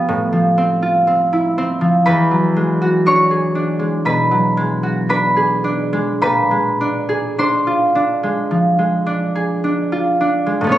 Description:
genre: classical, solo harp piece.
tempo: 51-62 BPM.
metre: 4/4.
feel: rubato.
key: unclear.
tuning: A4 = 438 Hz.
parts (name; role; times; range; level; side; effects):
concert harp; solo; 0.0-10.8 s; E2 to C#6; -14 LUFS; equal; none.
room: moderate recital hall reverb, RT60 1.8 s.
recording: recorded on a phone in the room, studio ambience, compression.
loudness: -14 LUFS.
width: side -13 dB against mid.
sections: 0.0-10.7 A section.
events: none.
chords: 0.1 Fmaj9/A; 2.1 E9; 6.2 Bb9.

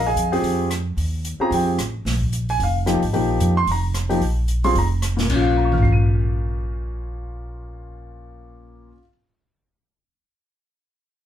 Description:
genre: modal jazz.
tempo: 222 BPM.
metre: 4/4.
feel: swing 59% on 8ths.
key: Bb dorian.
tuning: A4 = 444 Hz.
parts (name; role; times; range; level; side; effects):
warm concert grand piano; accompaniment; 0.0-9.1 s; Bb2 to Eb7; -22 LUFS; left 1 dB; none.
upright bass; bass; 0.0-8.9 s; F1 to F2; -23 LUFS; equal; none.
open jazz drum kit; drums; 0.2-5.9 s; crash cymbal, hi-hat, kick drum, rim click, snare drum, toms; -24 LUFS; equal; none.
room: moderate studio ambience, RT60 0.5 s.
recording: band playing live in one room.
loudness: -18 LUFS.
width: side -10 dB against mid.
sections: 0.0-5.3 A section; 5.3-7.4 B section.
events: none.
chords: 0.0 Bb9sus4; 5.3 Bbm.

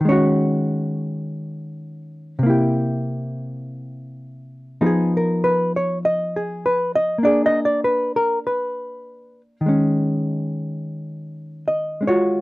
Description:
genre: jazz ballad.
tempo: 50 BPM.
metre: 4/4.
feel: swing 67% on 8ths.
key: Eb minor.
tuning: A4 = 440 Hz.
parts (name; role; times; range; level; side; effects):
hollow-body jazz guitar; solo; 0.0-12.4 s; C3 to Eb5; -19 LUFS; equal; none.
room: light reverb.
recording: dry, close 1970s-style studio recording.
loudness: -18 LUFS.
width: side -20 dB against mid.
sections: 0.0-9.6 A section; 9.6-12.4 B section.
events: none.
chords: 0.0 Ebm7; 2.4 C7; 4.8 Fm7b5; 7.2 Bb7; 9.6 Eb7sus4.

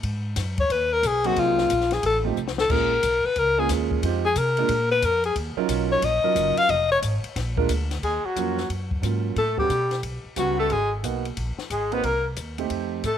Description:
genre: jazz, small-group swing and bop.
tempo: 180 BPM.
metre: 4/4.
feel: swing 64% on 8ths.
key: Eb minor.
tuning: A4 = 440 Hz.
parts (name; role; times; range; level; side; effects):
upright bass; bass; 0.0-13.2 s; F1 to C3; -28 LUFS; equal; none.
compact cocktail drum kit; drums; 0.0-13.1 s; crash cymbal, hi-hat, kick drum, ride cymbal, snare drum; -32 LUFS; left 3 dB; none.
breathy alto saxophone; melody; 0.6-13.2 s; F4 to F5; -22 LUFS; left 3 dB; none.
clear concert grand piano; accompaniment; 1.2-13.0 s; F3 to Bb4; -28 LUFS; right 13 dB; none.
clear trumpet; second line; 8.0-13.2 s; Gb3 to Cb4; -34 LUFS; right 12 dB; none.
room: light reverb, small room ambience.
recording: 1960s-style stereo.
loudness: -21 LUFS.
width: side -9 dB against mid.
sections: 0.0-8.0 A section; 8.0-13.2 B section.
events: alto saxophone solo 0.0-8.0; drum fill 2.4-2.7.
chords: 0.0 Abm7; 1.4 Cm7b5; 2.0 F7; 2.7 Bbm7; 4.0 Fm7; 4.7 Bb5; 5.4 Ebm7; 6.7 Fm7; 7.4 Bb7; 8.0 Ebm7; 9.4 A13; 10.7 Abm7; 12.0 Cm.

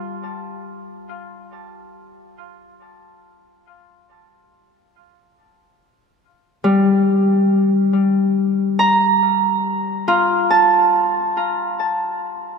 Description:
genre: ambient.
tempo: free time.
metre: none.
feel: none.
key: unclear.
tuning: A4 = 440 Hz.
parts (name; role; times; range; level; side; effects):
Celtic harp; solo; 0.0-1.1, 6.6-12.6 s; G3 to Bb5; -16 LUFS; equal; ping-pong delay.
room: wet cathedral reverb, RT60 5.4 s.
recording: none.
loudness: -14 LUFS.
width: side -5 dB against mid.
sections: 0.0-12.6 A section.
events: none.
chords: 0.0 N.C.; 5.8 Fsus4.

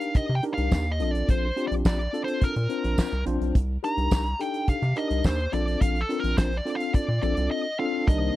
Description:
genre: early-eighties boogie funk.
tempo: 106 BPM.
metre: 4/4.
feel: straight.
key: unclear.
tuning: A4 = 440 Hz.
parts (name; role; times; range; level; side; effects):
nasal lead guitar with a parked wah; melody; 0.0-8.3 s; A4 to Bb5; -30 LUFS; equal; overdrive.
mellow tine electric piano; accompaniment; 0.0-8.4 s; C4 to C5; -29 LUFS; left 2 dB; medium stereo tremolo.
damped 70s drum kit; drums; 0.0-8.2 s; handclaps, hi-hat, kick drum, snare drum; -22 LUFS; equal; none.
rubbery square bass; bass; 0.1-8.3 s; Bb1 to C3; -26 LUFS; equal; none.
tambourine; percussion; 0.7-6.5 s; none; -45 LUFS; right 10 dB; none.
chorused pulse-width pad; sustained chords; 8.1-8.4 s; C3 to C4; -32 LUFS; equal; none.
room: little or no reverb.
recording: dry, close 1970s-style studio recording.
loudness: -23 LUFS.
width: side -15 dB against mid.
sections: 0.0-8.1 A section.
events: lead electric guitar solo 0.0-8.1; break 7.5-8.1.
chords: 0.0 Cm7; 1.0 Bbmaj9; 3.6 Cm7; 5.5 Bbmaj9.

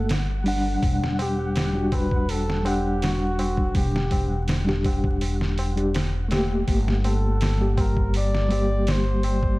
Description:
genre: trip hop.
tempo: 82 BPM.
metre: 4/4.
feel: straight.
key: E minor.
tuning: A4 = 440 Hz.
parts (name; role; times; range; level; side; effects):
mellow reed electric piano; accompaniment; 0.0-9.6 s; G3 to F#5; -26 LUFS; left 1 dB; fast tremolo, tape echo.
upright bass; bass; 0.0-9.6 s; E1 to G1; -25 LUFS; equal; tube saturation.
flickering grainy texture; texture; 0.0-9.6 s; F#5; -42 LUFS; right 2 dB; none.
trip hop sampler-style drum kit; drums; 0.1-9.6 s; hi-hat, kick drum, snare drum; -27 LUFS; equal; studio reverb.
tabla; percussion; 0.8-9.6 s; none; -38 LUFS; left 1 dB; none.
trumpet with bucket mute; melody; 1.2-9.6 s; F#4 to D5; -30 LUFS; equal; vintage 12-bit sampler grit, tape echo.
room: light reverb, small room ambience.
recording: dark, warm production, vinyl crackle.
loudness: -21 LUFS.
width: side -21 dB against mid.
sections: 0.0-9.6 A section.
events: none.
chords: 0.0 Gmadd9; 0.8 Em7; 6.7 Gmadd9.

